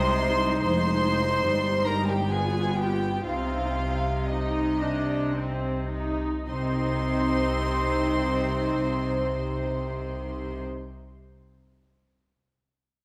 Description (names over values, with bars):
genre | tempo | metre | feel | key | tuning
classical, slow romantic movement for string orchestra | 52-76 BPM | 3/4 | rubato | C minor | A4 = 439 Hz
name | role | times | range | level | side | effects
warm studio violin section | melody | 0.0-10.6 s | Eb5 to C6 | -34 LUFS | equal | none
warm chamber violin section | second line | 0.0-10.6 s | Eb4 to C5 | -33 LUFS | equal | none
warm studio viola section | accompaniment | 0.0-10.6 s | G3 to F4 | -31 LUFS | equal | none
dark studio double bass section | bass | 0.0-10.6 s | F1 to C2 | -34 LUFS | equal | none
warm studio cello section | bass | 0.0-10.6 s | F2 to C3 | -34 LUFS | equal | none
room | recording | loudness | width
moderate scoring stage reverb, RT60 1.9 s | none | -26 LUFS | mono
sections
0.0-6.5 A section; 6.5-9.8 B section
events
slowing down 0.0-6.5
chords
0.0 Cm; 0.6 Fm7; 1.4 Cm/G; 2.3 G7b9; 3.3 Cm